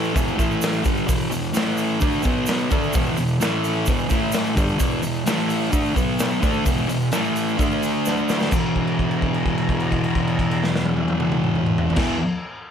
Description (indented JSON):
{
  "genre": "garage rock duo or trio",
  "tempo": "129 BPM",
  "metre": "4/4",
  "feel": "straight",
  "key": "unclear",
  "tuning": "A4 = 441 Hz",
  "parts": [
    { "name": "thick fuzz guitar", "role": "riff", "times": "0.0-12.2 s", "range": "E2 to D4", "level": "-20 LUFS", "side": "equal", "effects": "distortion" },
    { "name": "tube shaker", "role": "percussion", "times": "0.0-8.7 s", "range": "none", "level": "-36 LUFS", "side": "right 6 dB", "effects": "none" },
    { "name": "raw garage drum kit", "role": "drums", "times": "0.2-12.1 s", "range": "crash cymbal, hi-hat, kick drum, snare drum, toms", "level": "-24 LUFS", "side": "equal", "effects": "none" }
  ],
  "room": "light reverb",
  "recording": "none",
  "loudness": "-19 LUFS",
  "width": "side -8 dB against mid",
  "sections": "0.0-8.5 A section; 8.5-12.2 B section",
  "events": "drum fill 8.1-8.5; held note 8.5-12.0",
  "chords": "0.2 E5; 0.4 A5; 0.8 E5; 1.5 A5; 2.0 D5; 2.2 B5; 2.7 E5; 3.4 A5; 3.9 E5; 4.1 A5; 4.6 E5; 5.3 A5; 5.7 D5; 6.0 B5; 6.4 E5; 7.1 A5; 7.6 D5; 8.5 E5"
}